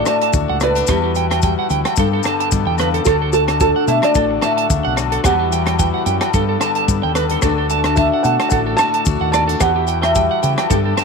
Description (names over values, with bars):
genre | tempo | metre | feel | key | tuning
highlife guitar band | 110 BPM | 4/4 | swing 54% on 16ths | D major | A4 = 443 Hz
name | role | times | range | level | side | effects
felt-muted upright piano | melody | 0.0-11.0 s | A4 to A5 | -18 LUFS | right 3 dB | none
nylon-string guitar | accompaniment | 0.0-11.0 s | E2 to G4 | -23 LUFS | left 13 dB | none
overdriven combo organ | sustained chords | 0.0-11.0 s | G3 to A4 | -26 LUFS | left 12 dB | none
electric guitar at the edge of break-up | arpeggios | 0.0-11.0 s | G4 to A5 | -21 LUFS | right 14 dB | wide subtle chorus, tape echo
tight funk drum kit | drums | 0.1-11.0 s | hi-hat, kick drum, rim click | -22 LUFS | equal | none
agogo bells | percussion | 0.1-11.0 s | none | -26 LUFS | left 15 dB | none
maracas | percussion | 0.1-11.0 s | none | -26 LUFS | left 19 dB | none
fingered electric bass | bass | 0.3-10.9 s | A1 to C#3 | -21 LUFS | equal | none
room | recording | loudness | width
light reverb, small room ambience | 1960s-style stereo with parts hard left and right | -14 LUFS | side -4 dB against mid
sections
0.0-11.0 A section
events
none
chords
0.0 D; 0.9 Emadd9; 2.0 Gadd9; 3.1 D; 5.2 Emadd9; 6.3 Gadd9; 7.4 D; 9.6 Emadd9